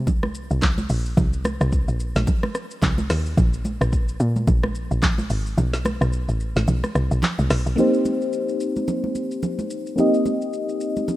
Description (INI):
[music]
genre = amapiano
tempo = 109 BPM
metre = 4/4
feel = swing 58% on 16ths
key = C minor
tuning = A4 = 440 Hz
[part]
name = woody log drum bass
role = bass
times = 0.0-7.8 s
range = Ab1 to Bb2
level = -22 LUFS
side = equal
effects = none
[part]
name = deep house drum kit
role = drums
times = 0.1-11.2 s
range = handclaps, hi-hat, kick drum, rim click, shaker, snare drum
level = -24 LUFS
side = equal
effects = vintage 12-bit sampler grit
[part]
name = congas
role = percussion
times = 0.1-11.2 s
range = none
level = -28 LUFS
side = right 2 dB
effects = none
[part]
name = bell-like FM electric piano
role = accompaniment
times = 7.8-11.2 s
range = Bb3 to Eb5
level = -20 LUFS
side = left 1 dB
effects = chorus, low-pass filter
[sound]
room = light reverb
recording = rough home demo mix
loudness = -20 LUFS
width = side -15 dB against mid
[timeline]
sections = 0.0-7.8 A section; 7.8-11.2 B section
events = drop 0.0-7.8; kick muted 5.6-7.8; filter sweep on FM electric piano 7.8-11.2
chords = 0.0 C7(no3); 3.4 N.C.; 5.6 Asus2; 7.8 Cm7